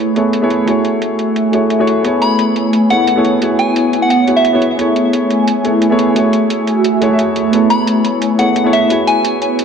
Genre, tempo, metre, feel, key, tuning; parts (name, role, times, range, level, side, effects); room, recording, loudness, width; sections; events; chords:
liquid drum and bass; 175 BPM; 4/4; swing 54% on 16ths; A major; A4 = 440 Hz
warm grand piano; accompaniment; 0.0-9.6 s; A3 to E5; -15 LUFS; left 1 dB; digital delay
airy breathy pad; sustained chords; 0.0-9.6 s; A3 to G#5; -15 LUFS; right 2 dB; chorus, phaser
electronic hi-hat; drums; 0.2-9.6 s; -25 LUFS; right 2 dB; overdrive, low-pass filter on hats, small room ambience, low-pass filter on cymbals, low-pass filter on snare, low-pass filter on toms
soft synth bell; melody; 2.2-4.6, 7.7-9.3 s; E5 to B5; -16 LUFS; left 1 dB; chorus, phaser, digital delay
moderate lush hall reverb, RT60 1.8 s, digital ambience; dark, warm production; -11 LUFS; side -6 dB against mid
0.0-9.6 A section
0.0 Amaj7; 0.7 F#m9; 2.0 Amaj7; 3.4 E6; 4.8 Amaj7; 6.2 F#m9; 7.5 Amaj7; 8.9 E6